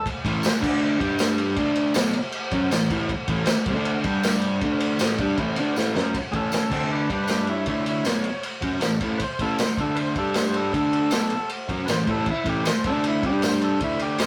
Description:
garage rock duo or trio; 157 BPM; 4/4; straight; A mixolydian; A4 = 440 Hz
overdriven combo organ; melody; 0.0-0.1, 6.3-14.3 s; C4 to C#5; -31 LUFS; equal
crunchy breakbeat drum kit; drums; 0.1-14.3 s; crash cymbal, kick drum, ride cymbal, snare drum; -28 LUFS; equal
fuzz guitar; riff; 0.2-14.3 s; A2 to G4; -26 LUFS; equal; distortion
tambourine; percussion; 0.4-14.3 s; -37 LUFS; equal
moderate booth ambience, RT60 0.3 s; rough rehearsal-room recording, warm saturation; -24 LUFS; mono
0.1-6.1 A section; 6.1-14.3 B section
drum fill 5.8-6.1; transistor combo organ solo 6.1-14.3
0.1 A5; 0.6 D5; 1.0 G5; 1.6 D5; 2.0 A5; 3.7 D5; 4.0 G5; 4.6 D5; 5.0 A; 6.7 D5; 7.1 G5; 7.7 D5; 8.1 A; 9.8 D5; 10.2 G5; 10.7 D5; 11.1 A5; 12.8 D5; 13.2 G5; 13.8 D5

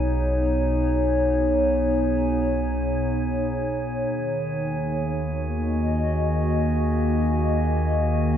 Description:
ambient; free time; Eb minor; A4 = 439 Hz
warbly tape-like pad; sustained chords; 0.0-8.4 s; B2 to Eb5; -23 LUFS; equal; chorus, built-in reverb
round analog bass; bass; 0.0-8.4 s; B1 to Eb2; -26 LUFS; equal
glass harmonica; texture; 0.0-8.4 s; Ab4 to Ab5; -34 LUFS; equal
wet cathedral reverb, RT60 5.1 s; dark, warm production; -21 LUFS; side -9 dB against mid
0.0-8.4 A section
0.0 Badd9; 4.1 Ebm

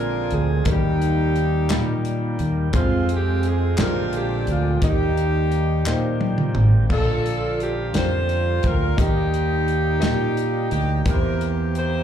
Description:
slow gospel; 58 BPM (dotted quarters); 6/8; straight; Bb major from 6.9 s; A4 = 440 Hz
mellow saxophone section; melody; 0.0-12.0 s; Ab3 to C5; -24 LUFS; right 1 dB; slapback echo
warm upright piano; accompaniment; 0.0-12.0 s; Bb2 to Eb5; -29 LUFS; left 2 dB; slapback echo
overdriven tonewheel organ; sustained chords; 0.0-12.0 s; D3 to Ab4; -32 LUFS; right 5 dB; fast rotary speaker
fingered electric bass; bass; 0.0-12.0 s; Ab1 to Bb2; -22 LUFS; equal
modern studio drum kit; drums; 0.3-11.9 s; crash cymbal, hi-hat, kick drum, snare drum, toms; -22 LUFS; right 1 dB
group handclap; percussion; 1.7-6.2 s; -31 LUFS; left 2 dB
little or no reverb; live gig heard through the venue's PA, club reverb; -18 LUFS; side -9 dB against mid
0.0-6.9 A section; 6.9-12.0 B section
drum fill 5.9-6.9
0.0 Bb9; 0.7 Eb; 2.7 Fm; 3.8 Bb13; 4.8 Eb; 6.9 Bb; 9.0 Eb; 11.1 C7/E

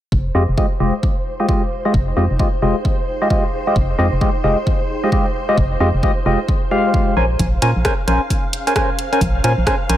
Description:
UK garage, two-step garage; 132 BPM; 4/4; swing 62% on 16ths; F minor; A4 = 440 Hz
soft string machine; sustained chords; 0.1-10.0 s; C5 to F5; -28 LUFS; right 1 dB; ensemble chorus, sidechain pumping
organ-like FM bass; bass; 0.1-10.0 s; F1 to Bb2; -17 LUFS; equal
electronic kick drum; drums; 0.1-9.8 s; -20 LUFS; equal; overdrive, studio reverb
granular cloud pad; texture; 2.1-10.0 s; Db4 to Ab5; -33 LUFS; right 2 dB
percussive organ stab; stabs; 0.3-10.0 s; Ab3 to Ab5; -19 LUFS; left 1 dB; chorus, tape echo
garage drum kit; drums; 7.4-10.0 s; hi-hat, rim click; -23 LUFS; equal; studio reverb
light reverb; -15 LUFS; side -12 dB against mid
0.1-10.0 A section
filter sweep on FM bass 0.1-10.0; filter sweep on synth stab 0.1-10.0
0.1 Fm9; 7.2 Bbm9

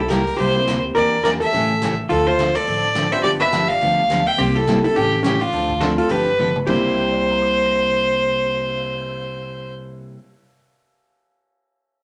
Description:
country, western swing; 210 BPM; 4/4; swing 60% on 8ths; C mixolydian; A4 = 440 Hz
clear fiddle; melody; 0.0-9.7 s; F4 to G5; -21 LUFS; equal
hollow-body jazz guitar; second line; 0.0-10.0 s; C4 to E5; -26 LUFS; equal
upright bass; bass; 0.0-10.0 s; G1 to E2; -32 LUFS; equal
picked steel-string acoustic guitar; accompaniment; 0.1-10.2 s; C3 to A4; -27 LUFS; equal
swinging big-band drum kit; drums; 0.1-8.9 s; crash cymbal, cymbal swell, hi-hat, kick drum, snare drum, toms; -35 LUFS; equal
dark upright piano; accompaniment; 0.6-10.8 s; C3 to Bb6; -32 LUFS; equal
wet club reverb, RT60 0.7 s; -19 LUFS; mono
0.0-6.7 A section; 6.7-9.0 B section
drum fill 6.4
0.0 C7; 1.0 Em7b5; 1.5 A7; 2.1 Dm7; 3.2 G7; 4.4 C7; 5.0 A7; 5.5 Dm7; 6.1 G7; 6.7 C7

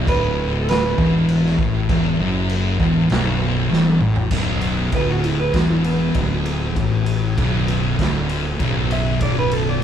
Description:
stoner and doom metal; 98 BPM; 4/4; straight; B minor; A4 = 436 Hz
vintage hollow-body jazz guitar; melody; 0.0-9.8 s; B3 to E5; -24 LUFS; right 3 dB
thick fuzz guitar; riff; 0.0-9.8 s; B1 to A2; -21 LUFS; left 6 dB; distortion
thick fuzz guitar; riff; 0.0-9.8 s; B1 to A2; -22 LUFS; right 4 dB; distortion
fuzz fingered electric bass; bass; 0.0-9.8 s; B0 to A1; -25 LUFS; equal; overdrive
raw garage drum kit; drums; 0.1-9.7 s; crash cymbal, kick drum, ride cymbal, snare drum, toms; -24 LUFS; right 1 dB
wet studio ambience, RT60 0.5 s; band playing live in one room; -16 LUFS; side -9 dB against mid
0.0-4.3 A section; 4.3-9.8 B section
drum fill 3.7-4.3; hollow-body jazz guitar solo 4.3-9.8
0.0 Bm

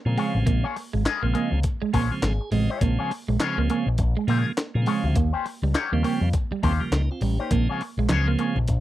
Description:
funk; 102 BPM; 4/4; swing 60% on 16ths; Bb dorian; A4 = 442 Hz
electric guitar with an envelope filter; accompaniment; 0.1-8.7 s; Db4 to Eb5; -30 LUFS; left 7 dB; wah
tonewheel organ; stabs; 0.1-8.6 s; Db3 to Eb5; -29 LUFS; right 3 dB; overdrive
picked electric bass with an envelope filter; bass; 0.1-8.8 s; Ab1 to Bb2; -23 LUFS; left 1 dB
electric guitar at the edge of break-up; riff; 0.2-8.7 s; G3 to Bb3; -29 LUFS; right 7 dB; spring reverb
breakbeat sampler-style drum kit; drums; 0.2-8.8 s; handclaps, hi-hat, kick drum, snare drum; -26 LUFS; left 1 dB
congas; percussion; 8.1-8.8 s; -31 LUFS; right 4 dB
little or no reverb; dry, close 1970s-style studio recording; -21 LUFS; side -14 dB against mid
0.0-8.8 A section
tonewheel organ fill 1.9-2.8
0.0 Bbm7; 5.2 Eb13; 7.5 Bbm7

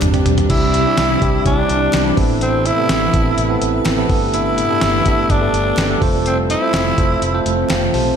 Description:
1980s-style pop; 125 BPM; 4/4; straight; C major; A4 = 440 Hz
raspy tenor saxophone; melody; 0.0-7.4 s; C4 to E4; -19 LUFS; left 1 dB; slapback echo, ping-pong delay
bell-like tine electric piano; accompaniment; 0.0-8.2 s; G2 to A5; -19 LUFS; right 2 dB; fast stereo tremolo, slapback echo
granular cloud pad; sustained chords; 0.0-8.2 s; A2 to B4; -24 LUFS; equal; built-in reverb
vintage muted fingered electric bass; bass; 0.0-8.1 s; F1 to C2; -22 LUFS; equal
dusty soul sampler-style drum kit; drums; 0.0-8.1 s; crash cymbal, hi-hat, kick drum, snare drum, tambourine, toms; -19 LUFS; equal
group handclap; percussion; 0.0-7.8 s; -37 LUFS; left 2 dB
wet lush hall reverb, RT60 1.7 s, digital ambience; big arena sound; -13 LUFS; side -7 dB against mid
0.5-8.2 A section
drum fill 0.0-0.5; tine electric piano fill 7.2-8.2
0.5 Cadd9; 2.2 Amadd9; 4.1 Gadd9; 6.0 F

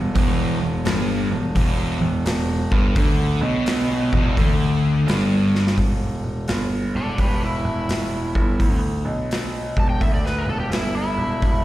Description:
blues rock power trio and southern rock; 85 BPM; 4/4; swing 65% on 8ths; E minor; A4 = 441 Hz
fuzz guitar; riff; 0.0-5.8 s; E2 to D3; -21 LUFS; equal; distortion, slapback echo
clear concert grand piano; bass; 0.0-11.6 s; E1 to D2; -23 LUFS; equal
big rock drum kit; drums; 0.2-11.6 s; hi-hat, kick drum, snare drum; -23 LUFS; equal
overdriven slide guitar; melody; 7.0-11.6 s; E4 to A5; -26 LUFS; equal; slapback echo, tape echo
small room ambience; live gig heard through the venue's PA, recital hall reverb; -18 LUFS; side -15 dB against mid
0.0-5.8 A section; 5.8-11.6 B section
drum fill 5.4-5.8; electric slide guitar solo 5.8-11.6
0.0 Em

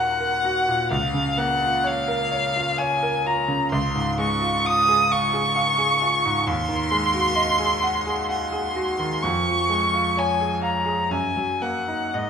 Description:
classical, romantic duo for violin and grand piano; 64 BPM; 3/4; uneven beats, rubato; Bb minor, Db major from 3.7 s; A4 = 443 Hz
warm violin; melody; 0.0-12.3 s; Eb5 to Eb6; -21 LUFS; equal
bright concert grand piano; accompaniment; 0.0-12.3 s; Db2 to Gb5; -24 LUFS; right 1 dB
wet recital hall reverb, RT60 1.5 s; -20 LUFS; side -7 dB against mid
0.0-12.3 A section
0.0 Ebm; 0.9 Bbm/Db; 3.7 Db; 6.5 Ab7/Eb; 9.2 Db/F; 11.1 Ebm/Gb

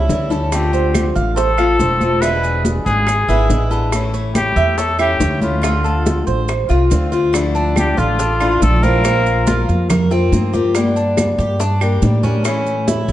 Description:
latin, Cuban son and guajira; 141 BPM; 4/4; straight; D minor; A4 = 440 Hz
picked acoustic archtop guitar; accompaniment; 0.0-13.1 s; B2 to G4; -20 LUFS; left 3 dB
Cuban tres; arpeggios; 0.0-13.1 s; C4 to F5; -22 LUFS; right 5 dB
upright bass; bass; 0.0-13.1 s; E1 to A2; -18 LUFS; right 1 dB
bongos; percussion; 0.1-13.1 s; -26 LUFS; left 4 dB
congas; percussion; 0.1-13.1 s; -22 LUFS; equal
maracas; percussion; 0.1-13.1 s; -32 LUFS; right 9 dB
breathy trumpet; melody; 0.5-9.7 s; F4 to B4; -19 LUFS; left 2 dB
claves; percussion; 0.5-12.7 s; -30 LUFS; right 5 dB
breathy bright concert flute; second line; 7.8-9.7 s; A4 to F5; -26 LUFS; right 3 dB
moderate large studio reverb, RT60 1.4 s; dark, warm production, nothing above 10.4 kHz; -13 LUFS; side -13 dB against mid
0.0-7.3 A section; 7.3-13.1 B section
drum fill 0.0-0.5
0.0 A7; 0.5 Dm7; 2.2 E7; 3.9 A; 5.6 Dm7; 7.3 Dmadd9; 9.0 Bbsus2; 10.7 Gm; 12.5 A

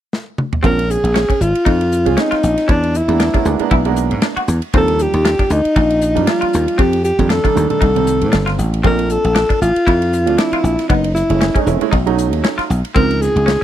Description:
electric jazz fusion; 117 BPM; 4/4; swing 56% on 16ths; A4 = 438 Hz
modern studio drum kit; drums; 0.1-13.6 s; hi-hat, kick drum, ride cymbal, snare drum, toms; -19 LUFS; equal
warm baby grand piano; accompaniment; 0.6-13.6 s; Eb3 to Ab4; -21 LUFS; right 12 dB
semi-hollow electric guitar; stabs; 0.6-13.6 s; Cb4 to Gb4; -22 LUFS; left 1 dB; wide subtle chorus
dry thumbed slap bass; bass; 0.6-13.6 s; Fb1 to A2; -17 LUFS; equal
warm alto saxophone; melody; 0.7-13.6 s; D4 to Bb4; -17 LUFS; left 1 dB; tape echo
small room ambience; dry, close 1970s-style studio recording; -13 LUFS; side -11 dB against mid
0.6-13.6 A section
drum fill 0.1-0.6
0.0 N.C.; 0.6 Bbm9; 2.7 E7#11; 4.7 Ebmaj9; 6.8 F13; 8.8 Bbmaj9; 10.9 Gbm7; 11.9 B9; 13.0 Dbmaj9

